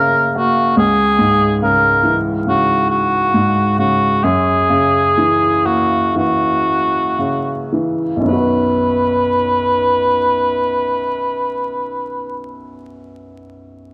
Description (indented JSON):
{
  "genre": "acoustic folk-pop ballad",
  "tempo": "54-72 BPM",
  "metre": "4/4",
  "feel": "straight",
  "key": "B major",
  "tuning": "A4 = 438 Hz",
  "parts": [
    { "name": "warm cor anglais", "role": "melody", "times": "0.0-12.5 s", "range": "F#4 to B4", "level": "-17 LUFS", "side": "equal", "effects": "none" },
    { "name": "warm upright piano", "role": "accompaniment", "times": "0.0-13.9 s", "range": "B1 to B4", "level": "-20 LUFS", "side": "equal", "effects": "none" }
  ],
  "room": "moderate spring reverb, RT60 2.0 s",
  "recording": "dark, warm production, vinyl crackle",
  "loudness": "-16 LUFS",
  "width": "mono",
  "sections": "0.0-8.3 A section; 8.3-12.7 B section",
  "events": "slowing down 0.8-8.3",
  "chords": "0.0 F#; 0.8 C#m; 4.2 F#7; 8.3 B",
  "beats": "| 0.77 1.61 2.47 3.34 | 4.24 5.17 6.14 7.17 | 8.26 9.37 10.48 11.59"
}